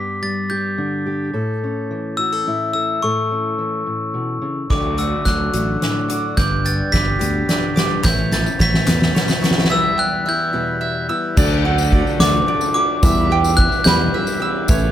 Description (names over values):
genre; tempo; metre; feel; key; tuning
indie folk with a building arrangement; 72 BPM (dotted quarters); 6/8; straight; D major; A4 = 439 Hz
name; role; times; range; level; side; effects
glockenspiel with hard plastic mallets; melody; 0.0-14.4 s; C#6 to B6; -21 LUFS; left 1 dB; none
fingerpicked steel-string acoustic guitar; accompaniment; 0.0-8.0 s; G2 to A4; -23 LUFS; left 1 dB; none
picked plugged-in steel-string acoustic guitar; accompaniment; 4.7-14.9 s; E2 to G4; -25 LUFS; left 5 dB; none
mandolin; arpeggios; 4.7-14.9 s; C#5 to E6; -25 LUFS; right 6 dB; plate reverb, tape echo
fingered electric bass; bass; 4.7-14.9 s; G1 to E2; -20 LUFS; equal; none
soft-mallet drum kit; drums; 4.7-14.8 s; crash cymbal, hi-hat, kick drum, ride cymbal, snare drum; -18 LUFS; equal; none
warm upright piano; accompaniment; 8.0-14.9 s; A1 to G5; -28 LUFS; right 2 dB; plate reverb
group handclap; percussion; 8.0-9.5 s; none; -31 LUFS; left 3 dB; none
tambourine; percussion; 8.0-14.8 s; none; -31 LUFS; left 9 dB; none
room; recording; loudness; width
light reverb; none; -16 LUFS; side -11 dB against mid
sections
0.0-4.7 A section; 4.7-11.4 B section; 11.4-14.9 C section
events
build-up 4.7-11.4; drum fill 4.7-9.7; break 9.7-11.4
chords
0.0 G; 1.3 A; 4.7 D; 6.4 G; 8.0 Aadd9; 9.7 Em; 11.4 D; 13.0 Em